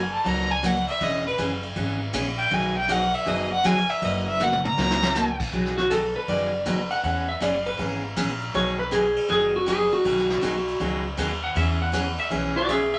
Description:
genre	country, western swing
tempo	159 BPM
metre	4/4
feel	swing 66% on 8ths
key	B major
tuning	A4 = 440 Hz
part	clear fiddle	second line	0.0-5.4 s	B4 to A#5	-26 LUFS	equal	none
part	upright bass	bass	0.0-12.9 s	E1 to E2	-34 LUFS	equal	none
part	picked steel-string acoustic guitar	accompaniment	0.2-12.8 s	B2 to G#4	-30 LUFS	equal	none
part	vintage brush drum kit	drums	0.3-13.0 s	crash cymbal, hi-hat, kick drum, ride cymbal, snare drum, toms	-33 LUFS	equal	none
part	clean lap steel guitar	second line	5.8-13.0 s	F#4 to F#5	-26 LUFS	equal	none
room	wet studio reverb, RT60 0.6 s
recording	none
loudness	-24 LUFS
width	mono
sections	0.0-5.5 A section; 5.5-13.0 A section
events	fiddle solo 0.0-5.5; drum fill 4.4-5.2; electric slide guitar solo 5.5-13.0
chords	0.0 F#6; 1.0 E6; 2.5 B6; 4.0 F#6; 5.5 B6; 7.0 E6; 8.5 B6; 11.6 E6

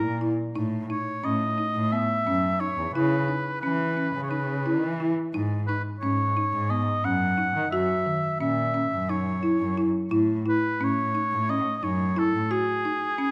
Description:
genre	contemporary instrumental, chamber music in an uneven meter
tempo	176 BPM (eighths)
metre	7/8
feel	straight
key	unclear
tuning	A4 = 440 Hz
part	warm oboe	melody	0.0-13.3 s	G#4 to F#5	-30 LUFS	equal	none
part	folk marimba with medium mallets	arpeggios	0.0-13.3 s	D#3 to F#4	-30 LUFS	equal	none
part	dark cello	bass	0.0-12.5 s	E2 to E3	-31 LUFS	equal	none
room	moderate concert hall reverb, RT60 2.3 s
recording	none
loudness	-26 LUFS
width	mono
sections	0.0-13.3 A section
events	none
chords	0.0 F#7 (rootless); 0.6 A; 2.9 C#m7; 5.3 G#5; 7.7 F#7; 10.1 A; 12.5 G#5

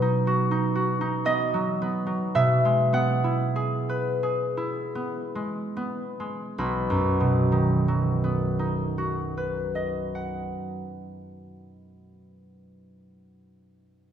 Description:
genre	classical, solo harp piece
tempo	35-62 BPM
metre	3/4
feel	rubato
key	B major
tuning	A4 = 445 Hz
part	concert harp	solo	0.0-12.7 s	B1 to B5	-23 LUFS	right 1 dB	none
room	wet scoring stage reverb, RT60 1.7 s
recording	recorded in a church or concert hall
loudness	-23 LUFS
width	side -9 dB against mid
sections	0.0-6.6 A section; 6.6-11.2 B section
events	slowing down 0.0-6.6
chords	0.0 B; 2.4 E/B; 6.6 B

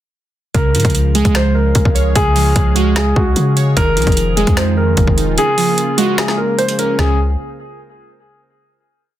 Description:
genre	hip hop, trap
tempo	149 BPM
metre	4/4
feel	half-time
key	Db major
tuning	A4 = 440 Hz
part	dark concert grand piano	melody	0.5-7.2 s	Gb4 to C5	-18 LUFS	equal	tape echo
part	glassy digital keys	accompaniment	0.5-7.2 s	Db3 to Db5	-18 LUFS	right 2 dB	chorus
part	sweeping resonant pad	sustained chords	0.5-7.2 s	Db3 to F5	-26 LUFS	right 1 dB	chorus
part	long sustained 808-style bass	bass	0.5-7.4 s	Eb1 to Db3	-16 LUFS	left 1 dB	none
part	trap drum kit	drums	0.5-7.1 s	finger snaps, hi-hat, kick drum, snare drum, toms	-17 LUFS	equal	none
room	little or no reverb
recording	dense, heavily limited modern master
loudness	-12 LUFS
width	side -12 dB against mid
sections	0.5-7.0 hook; 7.0-8.6 final chord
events	kick muted 5.4-7.0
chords	0.5 Db; 3.8 Fm7; 5.4 Bbm7; 7.0 Db

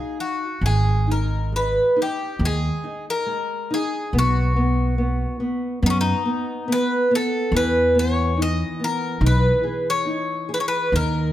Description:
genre	fado-style ballad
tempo	70 BPM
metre	4/4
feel	rubato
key	G# minor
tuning	A4 = 440 Hz
part	Greek bouzouki	melody	0.0-11.3 s	C#4 to D#5	-22 LUFS	equal	none
part	nylon-string guitar	accompaniment	0.0-11.3 s	D#3 to F5	-26 LUFS	left 1 dB	none
part	upright bass	bass	0.6-11.3 s	G#1 to F#2	-21 LUFS	equal	none
room	light reverb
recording	none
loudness	-19 LUFS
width	side -12 dB against mid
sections	0.6-11.3 A section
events	none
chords	0.0 Ebmadd9; 0.6 G#5; 4.1 B5; 7.5 Emaj7

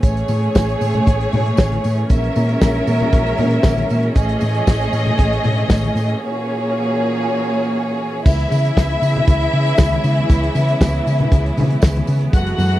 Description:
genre	disco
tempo	117 BPM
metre	4/4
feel	straight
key	C# minor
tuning	A4 = 441 Hz
part	dark studio string section	second line	0.0-12.8 s	A3 to F#5	-20 LUFS	equal	none
part	clear studio string section	sustained chords	0.0-12.8 s	A#2 to C#5	-24 LUFS	right 1 dB	none
part	hollow-body short-scale fingered electric bass	bass	0.0-12.8 s	F#1 to C#3	-18 LUFS	equal	none
part	warm soul drum kit	drums	0.0-12.8 s	crash cymbal, hi-hat, kick drum, snare drum	-13 LUFS	equal	none
part	tambourine	percussion	0.0-12.7 s	none	-40 LUFS	right 14 dB	none
part	congas	percussion	0.3-12.7 s	none	-26 LUFS	left 4 dB	none
room	little or no reverb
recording	dry, close 1970s-style studio recording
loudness	-14 LUFS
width	side -14 dB against mid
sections	0.0-8.3 A section; 8.3-12.8 B section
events	break 6.2-8.3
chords	0.0 Amaj7; 2.1 F#9/A#; 4.2 Amaj7; 6.2 F#9/A#; 8.3 C#m7

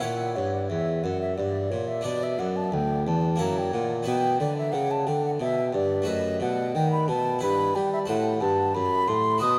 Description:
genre	classical, baroque-style sonata movement with continuo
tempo	89 BPM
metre	3/4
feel	rubato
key	B minor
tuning	A4 = 440 Hz
part	baroque flute	melody	0.0-9.6 s	C#5 to D#6	-30 LUFS	equal	none
part	harpsichord	accompaniment	0.0-9.6 s	D2 to D5	-32 LUFS	equal	none
part	dark bassoon	bass	0.0-9.6 s	D2 to G3	-30 LUFS	equal	none
room	wet cathedral reverb, RT60 5.7 s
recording	in a vast, echoing space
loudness	-26 LUFS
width	mono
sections	0.0-9.6 A section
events	none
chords	0.0 F#7; 2.1 Bm; 3.4 F#7; 4.1 Bm; 6.1 B7/F#; 7.4 Em/G; 8.1 F#dim

